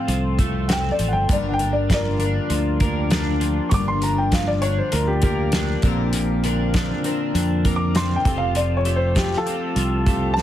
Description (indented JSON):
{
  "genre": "folk rock and heartland rock",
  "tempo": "99 BPM",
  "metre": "4/4",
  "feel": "straight",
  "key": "G minor",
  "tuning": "A4 = 440 Hz",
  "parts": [
    { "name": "dark concert grand piano", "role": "melody", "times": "0.0-10.4 s", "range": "F4 to D6", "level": "-24 LUFS", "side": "left 1 dB", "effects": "none" },
    { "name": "picked twelve-string acoustic guitar", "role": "accompaniment", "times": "0.0-10.4 s", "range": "G2 to Bb4", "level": "-28 LUFS", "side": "left 6 dB", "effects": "none" },
    { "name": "mellow tonewheel organ", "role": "sustained chords", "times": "0.0-10.4 s", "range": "C4 to C5", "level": "-35 LUFS", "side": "equal", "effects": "slow rotary speaker, overdrive, chorus vibrato" },
    { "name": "twelve-string electric guitar", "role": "riff", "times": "0.0-10.4 s", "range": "G2 to D4", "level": "-27 LUFS", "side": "right 2 dB", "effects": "analog chorus" },
    { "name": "fingered electric bass", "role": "bass", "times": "0.1-10.4 s", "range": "F1 to F2", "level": "-23 LUFS", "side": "equal", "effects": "none" },
    { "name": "loose indie drum kit", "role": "drums", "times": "0.1-10.4 s", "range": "hi-hat, kick drum, snare drum", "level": "-23 LUFS", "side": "equal", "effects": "none" }
  ],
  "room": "little or no reverb",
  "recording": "heavily compressed radio sound",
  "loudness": "-18 LUFS",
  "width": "side -12 dB against mid",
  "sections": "0.0-10.4 A section",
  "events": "grand piano solo 0.0-10.4",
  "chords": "0.0 F; 1.3 Gm7; 5.8 Bbadd9; 8.3 Fadd9",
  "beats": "0.09 0.69 | 1.30 1.90 2.51 3.12 | 3.72 4.33 4.93 5.54 | 6.14 6.75 7.35 7.96 | 8.56 9.16 9.77 10.37"
}